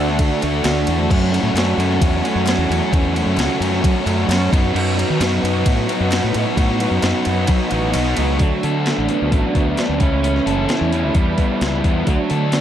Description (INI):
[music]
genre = indie rock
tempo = 132 BPM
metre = 4/4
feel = straight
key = unclear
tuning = A4 = 439 Hz
[part]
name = ensemble organ-string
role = sustained chords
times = 0.0-8.4 s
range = A4 to E6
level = -31 LUFS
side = left 1 dB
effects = none
[part]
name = overdriven electric guitar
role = riff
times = 0.0-12.6 s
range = F#3 to A4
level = -21 LUFS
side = left 7 dB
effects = none
[part]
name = raw garage guitar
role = riff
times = 0.0-12.6 s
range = E2 to F#4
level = -21 LUFS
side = right 9 dB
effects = overdrive, ensemble chorus, slapback echo
[part]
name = fuzz fingered electric bass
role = bass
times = 0.0-12.6 s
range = F#1 to F#3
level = -21 LUFS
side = equal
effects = overdrive
[part]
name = clean 12-bit digital drum machine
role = drums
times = 0.1-12.6 s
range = crash cymbal, hi-hat, kick drum, ride cymbal, snare drum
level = -21 LUFS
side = equal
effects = overdrive
[part]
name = group handclap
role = percussion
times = 0.4-8.1 s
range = none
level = -34 LUFS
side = left 7 dB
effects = none
[sound]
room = light reverb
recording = dark, warm production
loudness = -15 LUFS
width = side -10 dB against mid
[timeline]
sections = 0.0-8.4 A section; 8.4-12.6 B section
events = kick and snare drop out 7.9-8.4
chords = 0.0 Dadd9; 1.1 F#m; 4.5 Badd9/F#; 8.4 D6; 10.0 A; 11.2 Em; 12.1 D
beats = 0.20 0.66 | 1.11 1.57 2.02 2.48 | 2.94 3.39 3.85 4.30 | 4.76 5.21 5.67 6.12 | 6.58 7.03 7.49 7.95 | 8.40 8.86 9.32 9.78 | 10.24 10.70 11.15 11.61 | 12.07 12.53